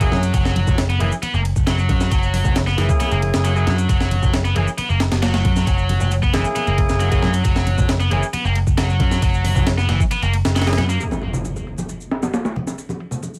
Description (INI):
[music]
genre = breakbeat, breaks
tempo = 135 BPM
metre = 4/4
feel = straight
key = unclear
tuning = A4 = 436 Hz
[part]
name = scooped high-gain guitar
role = riff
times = 0.0-11.0 s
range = E3 to B3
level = -26 LUFS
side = equal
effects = distortion, overdrive, vintage 12-bit sampler grit, delay
[part]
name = mellow horn section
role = stabs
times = 0.0-10.8 s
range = A#3 to G#4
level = -28 LUFS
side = equal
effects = delay
[part]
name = picked electric bass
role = bass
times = 0.0-11.0 s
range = F#1 to F#2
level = -21 LUFS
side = equal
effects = tube saturation
[part]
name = breakbeat sampler-style drum kit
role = drums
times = 0.0-13.3 s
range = hi-hat, kick drum, ride cymbal, snare drum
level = -23 LUFS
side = equal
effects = low-pass filter on cymbals, low-pass filter on kick, low-pass filter on snare, low-pass filter on hats
[part]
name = shaker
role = drums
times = 0.0-13.4 s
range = none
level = -41 LUFS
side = equal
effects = none
[part]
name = congas and bongos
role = percussion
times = 0.1-13.3 s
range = none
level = -31 LUFS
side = equal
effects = none
[part]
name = impact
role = sound effects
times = 11.0-12.8 s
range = none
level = -32 LUFS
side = equal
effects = none
[sound]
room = light reverb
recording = vinyl crackle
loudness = -19 LUFS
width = mono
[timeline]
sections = 0.0-11.0 A section; 11.0-13.4 B section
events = impact 11.0-12.8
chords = 0.0 F#7; 11.0 N.C.